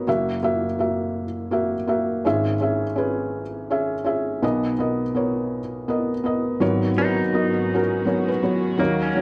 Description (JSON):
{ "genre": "acoustic folk-pop ballad", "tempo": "55 BPM (dotted quarters)", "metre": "6/8", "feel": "straight", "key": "G# minor", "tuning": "A4 = 440 Hz", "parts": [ { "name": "felt-muted upright piano", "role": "melody", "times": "0.0-9.2 s", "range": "F#1 to E5", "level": "-23 LUFS", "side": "equal", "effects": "none" }, { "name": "warm chamber string section", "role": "sustained chords", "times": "6.6-9.2 s", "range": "D#2 to F#4", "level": "-35 LUFS", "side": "equal", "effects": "none" }, { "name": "direct-recorded clean electric guitar", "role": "arpeggios", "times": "7.0-9.2 s", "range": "A#3 to D#4", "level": "-30 LUFS", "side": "equal", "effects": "harmonic tremolo, tape echo" } ], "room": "moderate large studio reverb, RT60 0.8 s", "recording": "worn, warbling old tape, cassette tape, warbly pitch drift", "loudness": "-23 LUFS", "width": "mono", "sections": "0.0-6.6 A section; 6.6-9.2 B section", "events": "none", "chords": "0.1 F#7; 2.2 E6/G#; 4.4 Bmaj7; 6.6 G#m11" }